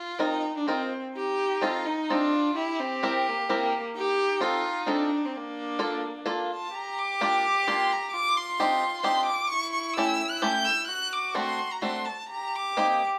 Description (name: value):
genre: musette waltz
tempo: 129 BPM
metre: 3/4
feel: straight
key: Bb major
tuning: A4 = 442 Hz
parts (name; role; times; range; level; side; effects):
- warm violin; melody; 0.0-13.0 s; Bb3 to G6; -30 LUFS; equal; none
- bluegrass banjo; accompaniment; 0.2-13.0 s; A3 to Bb4; -30 LUFS; equal; none
- warm violin; second line; 1.1-13.2 s; D4 to G4; -34 LUFS; equal; none
room: wet studio reverb, RT60 0.8 s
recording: band playing live in one room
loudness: -27 LUFS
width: mono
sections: 0.0-6.7 A section; 6.7-13.2 B section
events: none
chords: 0.0 F7sus4; 1.2 F7; 2.6 C7; 3.9 F7; 5.3 Bbmaj7; 6.7 Gm7; 8.1 Cmadd9; 9.5 A7; 10.9 D7; 12.3 Eb6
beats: 0.20 0.68 | 1.15 1.62 2.09 | 2.56 3.02 3.48 | 3.94 4.40 4.86 | 5.33 5.79 6.27 | 6.74 7.21 7.68 | 8.14 8.60 9.06 | 9.52 9.97 10.43 | 10.89 11.35 11.82 | 12.29 12.77